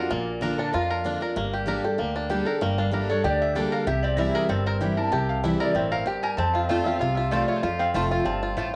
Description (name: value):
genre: bluegrass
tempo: 191 BPM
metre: 4/4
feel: straight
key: F major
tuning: A4 = 440 Hz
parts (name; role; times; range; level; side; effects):
- lap resonator guitar; second line; 0.0-8.7 s; F4 to A5; -32 LUFS; equal; none
- picked steel-string acoustic guitar; accompaniment; 0.0-8.8 s; F2 to A4; -29 LUFS; equal; none
- bluegrass banjo; arpeggios; 0.0-8.8 s; Bb3 to Bb4; -30 LUFS; equal; none
- upright bass; bass; 0.1-8.8 s; F1 to F2; -34 LUFS; equal; none
- mandolin; stabs; 6.7-8.7 s; A3 to A5; -36 LUFS; equal; tape echo
room: wet studio reverb, RT60 0.6 s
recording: home recording on cassette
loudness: -25 LUFS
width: mono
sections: 0.0-8.8 A section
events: resonator guitar played with a steel bar solo 0.0-8.8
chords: 0.0 Bb; 1.4 Gmadd9; 3.9 C; 6.4 F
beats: | 0.11 0.42 0.74 1.05 | 1.36 1.68 1.99 2.31 | 2.62 2.93 3.25 3.56 | 3.87 4.19 4.50 4.81 | 5.13 5.44 5.75 6.07 | 6.38 6.70 7.01 7.32 | 7.64 7.95 8.27 8.58